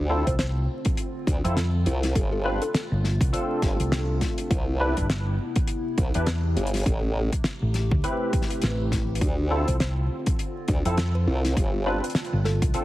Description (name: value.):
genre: glitch hop.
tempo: 102 BPM.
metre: 4/4.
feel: swing 58% on 16ths.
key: D dorian.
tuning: A4 = 440 Hz.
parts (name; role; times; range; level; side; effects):
warbly tape-like pad; sustained chords; 0.0-12.8 s; C3 to G4; -35 LUFS; left 1 dB; chorus, built-in reverb, phaser, sidechain pumping.
formant-sweep wobble bass; bass; 0.0-12.0 s; G1 to D2; -25 LUFS; equal; chorus, tube saturation.
barky tine electric piano; stabs; 0.1-12.8 s; C4 to B4; -30 LUFS; equal; overdrive, ensemble chorus, sidechain pumping, digital delay.
woody wave-folded pluck; melody; 0.3-2.9, 9.7-12.8 s; A4 to C5; -34 LUFS; left 1 dB; chorus, digital delay.
fingered electric bass; bass; 0.3-12.7 s; G1 to F2; -24 LUFS; equal; none.
damped 70s drum kit; drums; 0.3-12.8 s; hi-hat, snare drum; -30 LUFS; left 1 dB; none.
electronic kick drum; drums; 0.3-12.7 s; none; -26 LUFS; equal; none.
room: small room ambience.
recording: heavily compressed radio sound, multiband compression, vinyl crackle.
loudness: -22 LUFS.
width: side -16 dB against mid.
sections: 0.0-12.8 A section.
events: none.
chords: 0.0 Dm7; 2.2 G9sus4; 4.5 Cmaj7; 6.9 Am7; 9.2 Dm7; 11.6 G9sus4.